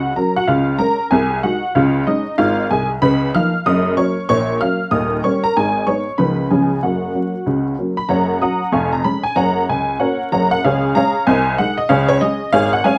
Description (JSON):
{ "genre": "jazz, stride piano", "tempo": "189 BPM", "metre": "4/4", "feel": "swing 62% on 8ths", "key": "F# major", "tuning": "A4 = 438 Hz", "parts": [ { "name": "honky-tonk upright piano", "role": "solo", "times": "0.0-13.0 s", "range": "D#1 to E#6", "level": "-17 LUFS", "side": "equal", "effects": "none" } ], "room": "light reverb", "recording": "close, detailed microphones, vinyl crackle", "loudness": "-17 LUFS", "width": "mono", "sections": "0.0-8.1 A section; 8.1-13.0 A section", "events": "none", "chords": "0.5 C#; 1.1 G#/B#; 1.7 C#; 3.0 C#13; 3.7 F#; 4.3 F#/A#; 4.9 D#7; 5.6 G#m; 6.2 C#13; 6.5 C#7; 6.8 F#; 8.7 C#/E#; 9.4 F#; 10.6 C#; 11.3 G#/B#; 11.9 C#", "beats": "0.16 | 0.47 0.79 1.11 1.43 | 1.75 2.06 2.38 2.70 | 3.02 3.33 3.65 3.97 | 4.29 4.61 4.92 5.24 | 5.56 5.88 6.19 6.51 | 6.83 7.15 7.46 7.78 | 8.10 8.42 8.73 9.05 | 9.37 9.69 10.00 10.32 | 10.64 10.95 11.27 11.59 | 11.90 12.22 12.54 12.86" }